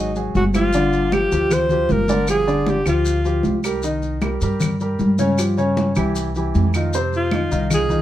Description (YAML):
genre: Afro-Cuban jazz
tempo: 155 BPM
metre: 4/4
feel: straight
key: unclear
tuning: A4 = 438 Hz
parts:
  - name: breathy alto saxophone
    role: melody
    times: 0.0-3.6, 7.2-8.0 s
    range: Eb4 to C5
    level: -20 LUFS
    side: equal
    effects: none
  - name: warm grand piano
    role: accompaniment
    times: 0.0-8.0 s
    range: C3 to Eb5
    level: -22 LUFS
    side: equal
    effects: none
  - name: upright bass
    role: bass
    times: 0.0-8.0 s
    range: G1 to G2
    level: -21 LUFS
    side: equal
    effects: none
  - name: congas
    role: percussion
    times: 0.2-8.0 s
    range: none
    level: -24 LUFS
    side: equal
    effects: none
  - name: maracas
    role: percussion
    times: 0.2-8.0 s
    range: none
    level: -34 LUFS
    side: left 4 dB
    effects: none
  - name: claves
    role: percussion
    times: 0.5-7.9 s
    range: none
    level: -33 LUFS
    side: right 2 dB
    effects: none
room: light reverb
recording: minimal, uncompressed stereo recording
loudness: -17 LUFS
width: side -12 dB against mid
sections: 0.0-8.0 A section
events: none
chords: 0.0 Ebmadd11; 0.7 Gm7; 2.3 G5; 3.8 Cm7; 5.4 Dbmaj7#11; 6.2 C; 6.9 Fm7